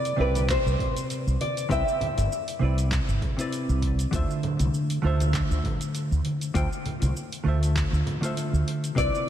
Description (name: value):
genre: sunset chillout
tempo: 99 BPM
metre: 4/4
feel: swing 54% on 16ths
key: D dorian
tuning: A4 = 440 Hz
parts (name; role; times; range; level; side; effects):
- nylon-string guitar; melody; 0.0-2.6, 9.0-9.3 s; B4 to E5; -28 LUFS; left 1 dB; lush chorus, ping-pong delay
- hollow-body jazz guitar; accompaniment; 0.0-9.3 s; C3 to G5; -28 LUFS; equal; auto-pan, ping-pong delay
- smooth R&B drum kit; drums; 0.1-9.3 s; handclaps, hi-hat, shaker; -37 LUFS; right 1 dB; overdrive
- mellow fretless electric bass; bass; 0.2-9.1 s; G1 to D2; -24 LUFS; equal; ensemble chorus
- congas; percussion; 0.4-8.2 s; none; -37 LUFS; left 2 dB; none
- electronic kick drum; drums; 0.5-9.1 s; none; -30 LUFS; equal; none
room: moderate lush hall reverb, RT60 2.9 s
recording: dreamy mix soaked in reverb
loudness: -23 LUFS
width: side -10 dB against mid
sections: 0.0-9.3 A section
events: none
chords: 0.0 Cmaj9; 4.1 Dm7